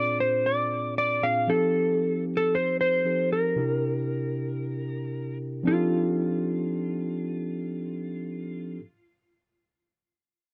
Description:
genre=blues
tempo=115 BPM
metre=4/4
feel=straight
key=F mixolydian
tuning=A4 = 437 Hz
part: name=clean lap steel guitar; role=melody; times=0.0-8.8 s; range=F4 to F5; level=-28 LUFS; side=equal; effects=none
part: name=mellow tine electric piano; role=accompaniment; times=0.0-8.8 s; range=Bb2 to Bb4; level=-31 LUFS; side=equal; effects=none
room=moderate booth ambience, RT60 0.2 s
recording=none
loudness=-27 LUFS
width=mono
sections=0.0-5.7 A section; 5.7-9.8 B section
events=none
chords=0.0 Bb9; 1.5 F9; 3.6 C9; 5.7 F13

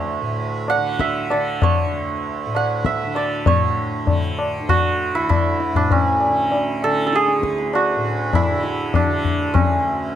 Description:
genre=indian classical, Hindustani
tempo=98 BPM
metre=5/4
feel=straight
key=D raga yaman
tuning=A4 = 439 Hz
part: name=santur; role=melody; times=0.0-10.2 s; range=C#4 to G#5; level=-20 LUFS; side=right 3 dB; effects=none
part: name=tanpura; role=drone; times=0.0-10.2 s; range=D2 to D3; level=-26 LUFS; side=equal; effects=none
part: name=tabla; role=percussion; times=0.7-9.8 s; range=none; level=-20 LUFS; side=left 4 dB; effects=none
room=light reverb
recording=close, detailed microphones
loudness=-17 LUFS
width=side -10 dB against mid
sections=0.0-3.5 A section; 3.5-10.2 B section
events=speeding up 0.0-10.2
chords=none

